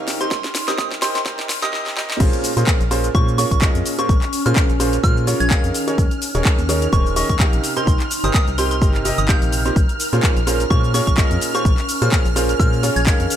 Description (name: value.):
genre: piano house.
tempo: 127 BPM.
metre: 4/4.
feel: swing 56% on 16ths.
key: Bb dorian.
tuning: A4 = 443 Hz.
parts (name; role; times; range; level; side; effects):
analog string pad; sustained chords; 0.0-13.4 s; F6; -30 LUFS; right 4 dB; ensemble chorus, sidechain pumping.
bright upright piano; riff; 0.0-13.4 s; Bb2 to F5; -23 LUFS; right 2 dB; sidechain pumping, tape echo.
organ-like FM bass; bass; 0.0-13.3 s; Eb1 to Bb2; -21 LUFS; equal; sidechain pumping.
ethereal airy pad; texture; 0.0-13.4 s; Db4 to Bb5; -29 LUFS; left 2 dB; ensemble chorus, built-in reverb, sidechain pumping.
house drum kit; drums; 0.1-13.4 s; crash cymbal, handclaps, hi-hat, shaker, snare drum; -24 LUFS; left 1 dB; overdrive, studio reverb.
soft synth bell; melody; 0.2-13.2 s; C6 to Ab6; -26 LUFS; right 1 dB; chorus, phaser, tape echo.
electronic kick drum; drums; 0.3-13.2 s; none; -17 LUFS; equal; overdrive, studio reverb.
room: light reverb.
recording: high-pass filter.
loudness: -15 LUFS.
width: side -10 dB against mid.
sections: 0.0-2.2 A section; 2.2-13.4 B section.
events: build-up 0.0-2.2; drum fill 0.0-1.7, 1.7-2.2; drop 2.2-13.4.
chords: 0.1 Cm7; 2.2 Bbm9; 5.7 Eb7sus4; 7.6 Cm7; 9.8 Bbm9.